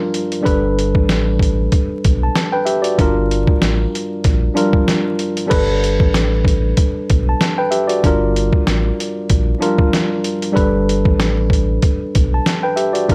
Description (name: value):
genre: hip hop, boom-bap hip-hop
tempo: 95 BPM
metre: 4/4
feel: swing 55% on 16ths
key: unclear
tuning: A4 = 439 Hz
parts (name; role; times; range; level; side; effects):
- mellow tine electric piano; accompaniment; 0.0-13.1 s; G2 to A5; -20 LUFS; equal; overdrive, high-pass filter, low-pass filter
- trip hop sampler-style drum kit; drums; 0.1-13.1 s; crash cymbal, hi-hat, kick drum, snare drum; -19 LUFS; equal; none
- sub bass with octave; bass; 0.5-13.1 s; G1 to B1; -21 LUFS; equal; none
room: light reverb, digital ambience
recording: vinyl crackle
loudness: -16 LUFS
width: mono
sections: 0.0-5.5 A section; 5.5-13.1 A section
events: none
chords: 0.5 Gadd9; 3.0 Gm9; 5.5 Gadd9; 8.0 Gm9; 10.6 Gadd9